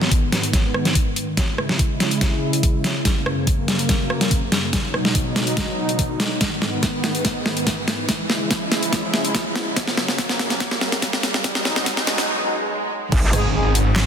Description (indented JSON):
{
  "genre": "heavy wobble dubstep",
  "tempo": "143 BPM",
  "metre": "4/4",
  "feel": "half-time",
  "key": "G# minor",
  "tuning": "A4 = 440 Hz",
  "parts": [
    { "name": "supersaw pad", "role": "sustained chords", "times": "0.0-13.1 s", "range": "F#2 to E4", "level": "-24 LUFS", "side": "equal", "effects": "sidechain pumping, low-pass filter" },
    { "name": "dubstep drum kit", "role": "drums", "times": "0.0-14.0 s", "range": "crash cymbal, handclaps, hi-hat, rim click, snare drum", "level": "-21 LUFS", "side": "equal", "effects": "overdrive" },
    { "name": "riser, swell and impact", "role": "sound effects", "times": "0.0-14.1 s", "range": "none", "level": "-30 LUFS", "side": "equal", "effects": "none" },
    { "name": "electronic kick drum", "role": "drums", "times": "0.1-13.2 s", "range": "none", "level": "-22 LUFS", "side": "equal", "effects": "overdrive" },
    { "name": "metallic wobble bass", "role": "bass", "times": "13.1-13.3 s", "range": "G#1", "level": "-19 LUFS", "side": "equal", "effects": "distortion, chorus, overdrive" },
    { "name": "mellow brass ensemble", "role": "stabs", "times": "13.3-13.7 s", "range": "G#3 to G#4", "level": "-24 LUFS", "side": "equal", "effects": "ping-pong delay" },
    { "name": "snarling distorted saw bass", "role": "bass", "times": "13.3-14.1 s", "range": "G#1", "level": "-18 LUFS", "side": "equal", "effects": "distortion, overdrive" }
  ],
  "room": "moderate lush hall reverb, RT60 1.9 s",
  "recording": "dense, heavily limited modern master, high-pass filter",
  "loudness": "-18 LUFS",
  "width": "side -8 dB against mid",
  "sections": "0.0-13.1 A section",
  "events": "build-up 0.0-13.1; drum fill 0.0-12.3; riser 0.0-12.3; filter sweep on supersaw synth 0.0-13.1; filter sweep 0.0-13.1; break 12.3-13.1; swell 12.3-13.1; impact 13.1-14.1",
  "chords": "0.0 G#m; 1.4 C#m; 3.1 F#; 4.7 B; 6.4 G#m; 8.1 C#m; 9.8 F#; 11.4 B; 13.1 G#5",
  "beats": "0.12 0.54 0.95 | 1.37 1.79 2.21 2.63 | 3.05 3.47 3.89 4.31 | 4.73 5.15 5.57 5.99 | 6.41 6.83 7.25 7.67 | 8.09 8.51 8.93 9.35 | 9.77 10.19 10.61 11.02 | 11.44 11.86 12.28 12.70 | 13.12 13.54 13.96"
}